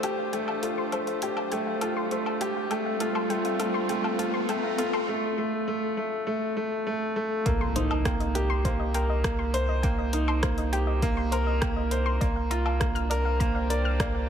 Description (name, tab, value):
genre	piano and strings electronica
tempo	101 BPM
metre	4/4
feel	straight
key	C dorian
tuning	A4 = 439 Hz
part	warm chamber string section	sustained chords	0.0-5.1, 12.8-14.3 s	G3 to Bb5	-34 LUFS	equal	sidechain pumping
part	soft round pluck	arpeggios	0.0-14.2 s	A4 to F6	-33 LUFS	left 3 dB	chorus, sidechain pumping, digital delay
part	bright concert grand piano	riff	0.0-14.3 s	A3 to D5	-28 LUFS	right 1 dB	digital delay
part	round analog bass	bass	0.0-14.3 s	C2	-28 LUFS	equal	tube saturation, sidechain pumping, high-pass filter
part	deep house drum kit	drums	0.0-14.1 s	hi-hat, rim click, woodblock	-34 LUFS	left 1 dB	none
part	riser and impact	sound effects	0.5-9.8 s	none	-37 LUFS	right 1 dB	none
part	electronic kick drum	drums	7.5-14.1 s	none	-29 LUFS	equal	none
room	moderate concert hall reverb, RT60 1.8 s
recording	none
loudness	-25 LUFS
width	side -8 dB against mid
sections	0.0-7.5 A section; 7.5-14.3 B section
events	build-up 0.0-7.5; filter sweep on synth arpeggio sound 0.0-7.5; riser 0.5-5.1; drop 7.5-14.3; impact 7.5-9.8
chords	0.0 Fadd9/C; 2.7 Gsus2/C; 7.5 Cm7; 12.2 Bb/C